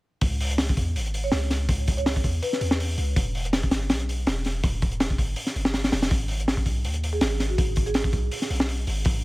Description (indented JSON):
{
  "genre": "drum and bass, jungle",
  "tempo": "163 BPM",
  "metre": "4/4",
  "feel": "swing 54% on 16ths",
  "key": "C# minor",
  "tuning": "A4 = 440 Hz",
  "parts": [
    { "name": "long sustained 808-style bass", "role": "bass", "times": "0.2-9.2 s", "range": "E1 to E2", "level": "-27 LUFS", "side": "equal", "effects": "none" },
    { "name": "crunchy breakbeat drum kit", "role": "drums", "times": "0.2-9.2 s", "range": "hi-hat, kick drum, snare drum", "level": "-24 LUFS", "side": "equal", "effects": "none" },
    { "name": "marimba with soft mallets", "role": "melody", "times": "1.2-2.7, 7.1-8.1 s", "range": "F#4 to C#5", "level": "-33 LUFS", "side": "right 2 dB", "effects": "dub echo" }
  ],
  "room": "studio ambience",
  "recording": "none",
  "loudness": "-22 LUFS",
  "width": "side -19 dB against mid",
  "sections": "0.2-9.2 A section",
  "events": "none",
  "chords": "0.2 C#m; 3.2 Em; 6.1 G#m"
}